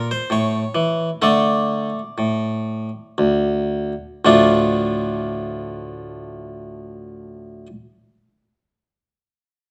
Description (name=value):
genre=classical, baroque-style suite movement for harpsichord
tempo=56-71 BPM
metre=3/4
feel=rubato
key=D minor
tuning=A4 = 440 Hz
part: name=harpsichord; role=solo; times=0.0-7.7 s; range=D2 to D5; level=-21 LUFS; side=equal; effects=none
room=moderate recital hall reverb, RT60 1.3 s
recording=recorded in a church or concert hall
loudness=-20 LUFS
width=mono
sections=0.0-4.2 A section; 4.2-7.3 B section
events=slowing down 0.0-4.2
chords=0.3 A; 1.2 D5; 4.2 Dm